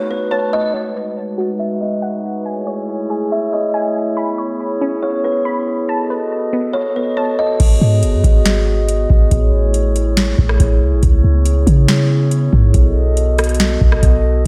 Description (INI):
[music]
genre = hip hop, atmospheric cloud-rap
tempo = 140 BPM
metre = 4/4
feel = half-time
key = unclear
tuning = A4 = 440 Hz
[part]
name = kalimba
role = melody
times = 0.0-7.6 s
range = B4 to E5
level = -24 LUFS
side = equal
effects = low-pass filter, analog delay
[part]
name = glass harmonica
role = sustained chords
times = 0.0-14.5 s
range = G#3 to D#5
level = -23 LUFS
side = equal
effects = sidechain pumping, low-pass filter
[part]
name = glassy wavetable pluck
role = arpeggios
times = 0.0-7.6 s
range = B3 to B5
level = -28 LUFS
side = equal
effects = chorus, low-pass filter, analog delay
[part]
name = clean 808-style bass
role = bass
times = 7.6-14.4 s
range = F#1 to C#3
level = -16 LUFS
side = equal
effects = none
[part]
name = booming analog drum machine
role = drums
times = 7.6-14.2 s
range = crash cymbal, hi-hat, kick drum, rim click, snare drum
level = -17 LUFS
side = equal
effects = none
[sound]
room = moderate lush hall reverb, RT60 1.7 s, digital ambience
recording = dreamy mix soaked in reverb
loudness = -16 LUFS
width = mono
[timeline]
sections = 0.7-7.6 A section; 7.6-14.5 B section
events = break 0.0-0.7; filter sweep 0.7-7.6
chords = 0.0 B7; 0.7 G#m7; 2.5 Amaj7; 4.2 C#m7; 5.9 B7; 7.6 G#m7; 9.3 Amaj7; 11.0 C#m7; 12.7 B7